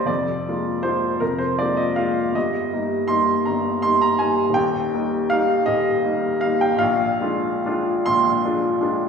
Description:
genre	classical, romantic nocturne for solo piano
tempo	54 BPM (dotted quarters)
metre	6/8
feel	rubato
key	Eb major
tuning	A4 = 440 Hz
part	clear upright piano	solo	0.0-9.1 s	Eb1 to C6	-18 LUFS	equal	none
room	wet scoring stage reverb, RT60 1.4 s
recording	recorded in a church or concert hall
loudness	-18 LUFS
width	side -6 dB against mid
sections	0.0-9.1 A section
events	none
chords	0.1 Bb7/F; 2.3 Eb/G; 4.6 Eb; 6.8 Bb7

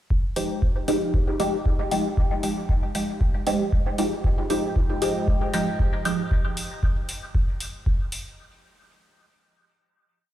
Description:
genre	dub techno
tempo	116 BPM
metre	4/4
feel	straight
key	F minor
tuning	A4 = 440 Hz
part	electronic kick drum	drums	0.1-8.0 s	none	-23 LUFS	equal	none
part	filtered dub chord stab	stabs	0.4-6.2 s	F3 to G4	-25 LUFS	equal	phaser, sidechain pumping, dub echo
part	electronic hi-hat	drums	0.4-8.2 s	none	-34 LUFS	left 1 dB	none
part	dark analog pad	sustained chords	4.2-6.3 s	Ab3 to G5	-33 LUFS	equal	chorus, phaser, sidechain pumping
room	light reverb, digital ambience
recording	played on a big sound system in a bare room, stone room reverb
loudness	-22 LUFS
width	side -12 dB against mid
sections	0.1-8.4 groove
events	none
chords	0.1 Fm9

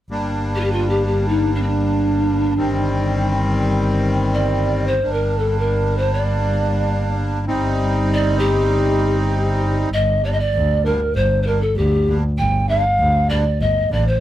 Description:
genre	klezmer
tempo	free time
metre	none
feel	none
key	G minor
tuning	A4 = 443 Hz
part	accordion	accompaniment	0.1-14.1 s	Eb3 to Eb4	-22 LUFS	left 1 dB	light tremolo tuning
part	rich double bass	bass	0.1-14.2 s	G1 to D2	-19 LUFS	equal	none
part	mellow hollow pan flute	melody	0.6-14.2 s	C4 to G5	-20 LUFS	equal	none
room	little or no reverb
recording	dry, close 1970s-style studio recording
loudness	-16 LUFS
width	side -13 dB against mid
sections	0.1-9.9 A section; 9.9-14.2 B section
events	none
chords	0.1 Gm; 2.6 Cm/G; 5.0 Gm; 7.5 Cm/G; 9.9 Gm

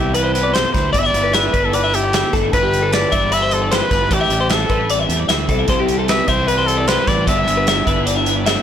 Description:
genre	math rock and midwest emo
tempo	152 BPM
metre	4/4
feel	straight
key	G major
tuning	A4 = 436 Hz
part	clear trumpet	melody	0.0-8.0 s	G4 to E5	-20 LUFS	left 1 dB	tape echo
part	twelve-string electric guitar	accompaniment	0.0-8.6 s	D2 to G4	-26 LUFS	right 9 dB	ensemble chorus
part	twelve-string electric guitar	arpeggios	0.0-8.6 s	G4 to E5	-19 LUFS	left 5 dB	tape echo
part	fuzz fingered electric bass	bass	0.0-8.6 s	G1 to E2	-21 LUFS	right 1 dB	overdrive
part	modern studio drum kit	drums	0.1-8.6 s	hi-hat, kick drum, snare drum	-20 LUFS	right 1 dB	none
part	crunchy overdriven guitar	riff	5.7-8.6 s	C3 to G4	-26 LUFS	right 1 dB	none
room	light reverb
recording	blown-out, overdriven recording, overdrive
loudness	-14 LUFS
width	side -9 dB against mid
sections	0.0-8.6 A section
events	none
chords	0.0 Cmaj7; 0.9 G6; 2.5 Em7/G; 4.1 Am7; 7.3 G6

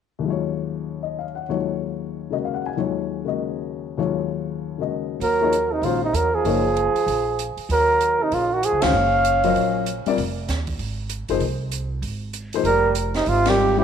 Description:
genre	modal jazz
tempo	193 BPM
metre	4/4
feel	swing 62% on 8ths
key	Eb dorian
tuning	A4 = 440 Hz
part	dark upright piano	accompaniment	0.2-6.6, 8.8-13.8 s	Eb2 to Ab5	-24 LUFS	left 9 dB	none
part	trumpet with bucket mute	melody	5.2-10.1, 12.7-13.8 s	Eb4 to F5	-20 LUFS	equal	none
part	trombone with cup mute	second line	5.2-10.1, 12.7-13.8 s	C3 to Db4	-27 LUFS	right 13 dB	none
part	upright bass	bass	5.2-13.8 s	F1 to Fb2	-26 LUFS	right 2 dB	none
part	open jazz drum kit	drums	5.2-13.5 s	hi-hat, kick drum, ride cymbal, snare drum	-32 LUFS	right 4 dB	none
room	moderate plate reverb, RT60 1.9 s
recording	1960s-style stereo with parts hard left and right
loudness	-20 LUFS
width	side -8 dB against mid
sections	0.2-5.2 A section; 5.2-13.8 B section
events	band accent 8.8, 13.4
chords	0.2 Ebm11; 10.2 Fm11

